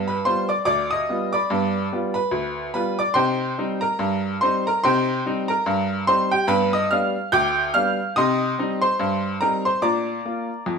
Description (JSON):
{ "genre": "ragtime piano", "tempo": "72 BPM", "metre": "2/4", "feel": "swing 57% on 16ths", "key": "unclear", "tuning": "A4 = 438 Hz", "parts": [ { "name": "bright upright piano", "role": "solo", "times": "0.0-10.8 s", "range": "D2 to G6", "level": "-19 LUFS", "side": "equal", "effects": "none" } ], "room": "wet studio reverb, RT60 0.7 s", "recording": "band playing live in one room", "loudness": "-19 LUFS", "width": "side -5 dB against mid", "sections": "0.0-10.8 A section", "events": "none", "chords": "0.0 G7; 3.2 Cm; 6.5 G7; 8.2 Cm; 9.8 Bb", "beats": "0.67 | 1.50 2.34 | 3.17 4.00 | 4.84 5.67 | 6.50 7.33 | 8.16 8.99 | 9.83 10.67" }